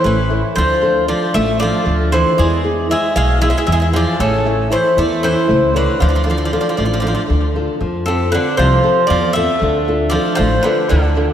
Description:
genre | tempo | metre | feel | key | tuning
greek folk, Greek bouzouki band | 232 BPM (eighths) | 7/8 | straight | D dorian sharp4 | A4 = 440 Hz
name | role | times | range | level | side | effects
Greek bouzouki | melody | 0.0-11.3 s | A4 to F5 | -18 LUFS | left 1 dB | tape echo
Greek bouzouki | second line | 0.0-11.3 s | C3 to A3 | -21 LUFS | right 2 dB | tape echo
flamenco guitar | accompaniment | 0.0-11.3 s | B2 to C#5 | -19 LUFS | equal | none
upright bass | bass | 0.0-11.3 s | A1 to F2 | -18 LUFS | equal | none
room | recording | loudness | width
wet lush hall reverb, RT60 2.8 s | dreamy mix soaked in reverb | -13 LUFS | side -10 dB against mid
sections
0.0-7.8 A section; 7.8-11.3 B section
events
none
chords
0.0 A; 0.6 Dm; 2.4 E; 4.2 A; 6.0 Dm; 7.8 F; 9.6 Dm

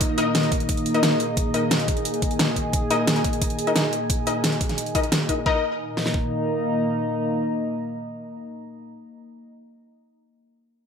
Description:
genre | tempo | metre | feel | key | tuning
dark technical drum and bass | 176 BPM | 4/4 | straight | unclear | A4 = 439 Hz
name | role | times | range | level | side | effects
sweeping resonant pad | sustained chords | 0.0-8.9 s | Bb2 to Bb4 | -29 LUFS | right 1 dB | chorus, sidechain pumping
dubstep drum kit | drums | 0.0-6.2 s | kick drum, snare drum | -25 LUFS | equal | overdrive
dubstep drum kit | drums | 0.0-5.4 s | hi-hat, snare drum | -24 LUFS | equal | overdrive
warbly tape-like pad | texture | 0.0-8.9 s | Bb3 to Bb5 | -27 LUFS | left 1 dB | chorus, built-in reverb, sidechain pumping
orchestra-hit-like synth stab | stabs | 0.2-8.9 s | Eb4 to Eb5 | -26 LUFS | left 4 dB | built-in reverb, cassette tape, digital delay
room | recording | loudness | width
wet digital room reverb, RT60 1.1 s | none | -20 LUFS | side -7 dB against mid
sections
0.0-5.5 A section; 5.5-8.2 B section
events
none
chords
0.0 Eb5

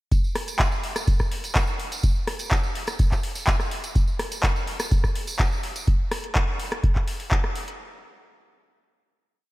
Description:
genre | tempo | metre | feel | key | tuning
house | 125 BPM | 4/4 | straight | none | none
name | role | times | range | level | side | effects
booming analog drum machine | drums | 0.1-7.8 s | handclaps, hi-hat, rim click | -28 LUFS | equal | none
electronic kick drum | drums | 0.1-7.4 s | none | -22 LUFS | equal | none
tambourine | percussion | 0.1-5.9 s | none | -36 LUFS | right 3 dB | none
room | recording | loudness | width
light reverb, digital ambience | none | -22 LUFS | side -18 dB against mid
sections
0.1-7.8 drop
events
drop 0.1-7.8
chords
none

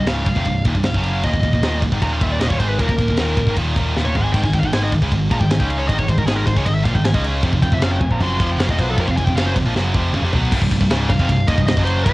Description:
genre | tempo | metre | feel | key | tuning
heavy metal | 155 BPM | 4/4 | straight | C phrygian | A4 = 436 Hz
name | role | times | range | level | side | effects
high-gain lead guitar | melody | 0.0-12.1 s | Ab4 to C6 | -25 LUFS | equal | distortion, cassette tape
heavy high-gain guitar | riff | 0.0-12.1 s | C2 to Db4 | -21 LUFS | right 2 dB | distortion, cassette tape
scooped high-gain guitar | riff | 0.0-12.1 s | C2 to Db4 | -26 LUFS | left 5 dB | distortion, cassette tape
overdriven picked electric bass | bass | 0.0-12.1 s | C1 to Db2 | -21 LUFS | equal | none
tight metal drum kit | drums | 0.1-12.1 s | crash cymbal, kick drum, ride cymbal, snare drum, toms | -21 LUFS | equal | cassette tape
warm studio string section | sustained chords | 4.3-10.5 s | Eb3 to F4 | -31 LUFS | left 1 dB | cassette tape
room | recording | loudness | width
small room ambience | home recording on cassette | -15 LUFS | side -20 dB against mid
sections
0.0-10.5 A section; 10.5-12.1 B section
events
lead electric guitar solo 0.0-10.5; drum fill 4.0-4.3, 9.8-10.5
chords
0.0 Cm; 1.2 Eb5; 4.3 Ab5; 7.4 F5; 10.5 Cm

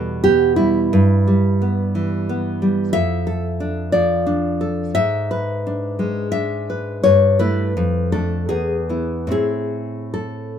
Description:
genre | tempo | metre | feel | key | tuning
romantic piece for solo classical guitar | 71-92 BPM | 3/4 | rubato | unclear | A4 = 441 Hz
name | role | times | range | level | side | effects
nylon-string guitar | solo | 0.0-10.6 s | E2 to E5 | -17 LUFS | equal | none
room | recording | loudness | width
light reverb | minimal, uncompressed stereo recording | -17 LUFS | side -8 dB against mid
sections
0.0-10.6 A section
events
none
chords
0.0 Em; 0.9 Em/G; 3.0 Dm/F; 5.0 E7/G#; 7.1 A7/G; 7.8 Dm/F; 8.5 E; 9.3 Am

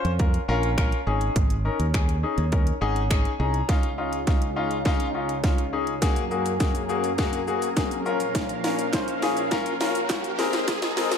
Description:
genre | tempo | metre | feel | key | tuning
dance-pop | 103 BPM | 4/4 | straight | Db major | A4 = 440 Hz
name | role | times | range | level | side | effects
warm grand piano | accompaniment | 0.0-11.2 s | Bb3 to Bb5 | -26 LUFS | left 4 dB | sidechain pumping
modern bright fingered electric bass | bass | 0.0-3.6 s | Ab1 to F2 | -25 LUFS | right 1 dB | sidechain pumping
house drum kit | drums | 0.0-11.2 s | finger snaps, hi-hat, kick drum, shaker, snare drum | -25 LUFS | right 1 dB | overdrive
lush unison pad | sustained chords | 3.7-11.2 s | Db2 to F5 | -31 LUFS | equal | chorus, sidechain pumping
riser | sound effects | 6.8-11.2 s | none | -34 LUFS | right 2 dB | none
group handclap | percussion | 8.9-10.2 s | none | -40 LUFS | right 5 dB | none
room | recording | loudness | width
light reverb | high-pass filter | -22 LUFS | side -7 dB against mid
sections
0.0-3.7 A section; 3.7-11.2 B section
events
grand piano fill 2.5-3.7; build-up 3.7-11.2; drum fill 3.7-11.2; filter sweep 3.7-11.2; riser 6.8-11.2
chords
0.0 Bbm; 1.1 Absus4; 3.7 Dbadd9; 6.0 Gbadd9; 8.1 Bbm; 10.4 Abadd9

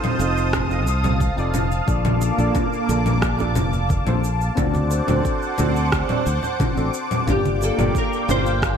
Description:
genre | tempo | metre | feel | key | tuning
sunset chillout | 89 BPM | 4/4 | straight | unclear | A4 = 440 Hz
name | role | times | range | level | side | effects
soft electric-piano-like synth keys | accompaniment | 0.0-8.8 s | Bb3 to Eb5 | -26 LUFS | moving between left 5 dB and right 7 dB | chorus, auto-pan, low-pass filter, digital delay
lush unison pad | sustained chords | 0.0-8.8 s | Bb3 to Eb6 | -25 LUFS | equal | chorus, phaser
electronic congas, cabasa and rim click | drums | 0.0-8.8 s | none | -25 LUFS | equal | gated reverb
modern bright fingered electric bass | bass | 0.2-8.8 s | F1 to D2 | -22 LUFS | equal | none
bongos and congas | percussion | 0.2-8.4 s | none | -30 LUFS | right 3 dB | none
electronic kick drum | drums | 0.5-8.8 s | none | -25 LUFS | equal | none
nylon-string guitar | melody | 7.3-8.8 s | G4 to C5 | -24 LUFS | left 1 dB | ensemble chorus, digital delay
room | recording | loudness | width
light reverb | bright 1980s-style digital production | -18 LUFS | side -8 dB against mid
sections
0.0-8.8 A section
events
none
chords
0.0 F7; 1.9 Bbmaj7; 4.6 D7; 7.3 Gm7

